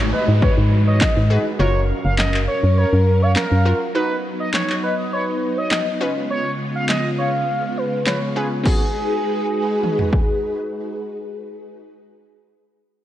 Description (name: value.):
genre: dance-pop.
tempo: 102 BPM.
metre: 4/4.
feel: straight.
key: G# dorian.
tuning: A4 = 443 Hz.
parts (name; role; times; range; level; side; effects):
expressive synth lead; melody; 0.0-10.4 s; G#4 to E#5; -26 LUFS; right 3 dB; chorus, sidechain pumping.
string machine, violas; sustained chords; 0.0-11.8 s; C#3 to E#5; -26 LUFS; equal; ensemble chorus, sidechain pumping.
organ-like FM bass; bass; 0.0-3.7 s; F#1 to G#2; -16 LUFS; equal; sidechain pumping.
downlifter; sound effects; 0.0-4.0 s; none; -30 LUFS; left 2 dB; none.
mellow horn-like synth lead; melody; 0.1-11.8 s; G#4 to E#5; -25 LUFS; left 2 dB; chorus, phaser, dub echo.
punchy analog drum machine; drums; 0.4-10.3 s; crash cymbal, handclaps, kick drum, snare drum, toms; -21 LUFS; equal; none.
glassy wavetable pluck; accompaniment; 1.3-12.2 s; B3 to B4; -26 LUFS; left 1 dB; chorus, sidechain pumping.
room: light reverb.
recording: worn, warbling old tape, cassette tape, warbly pitch drift.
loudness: -17 LUFS.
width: side -12 dB against mid.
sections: 0.0-8.7 A section; 8.7-11.0 B section.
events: none.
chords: 0.0 G#m7; 1.6 F#maj7; 4.0 B; 6.0 C#7; 8.7 G#m7.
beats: 0.42 1.01 | 1.60 2.19 2.77 3.36 | 3.95 4.54 5.13 5.71 | 6.30 6.89 7.48 8.07 | 8.66 9.24 9.83 10.42.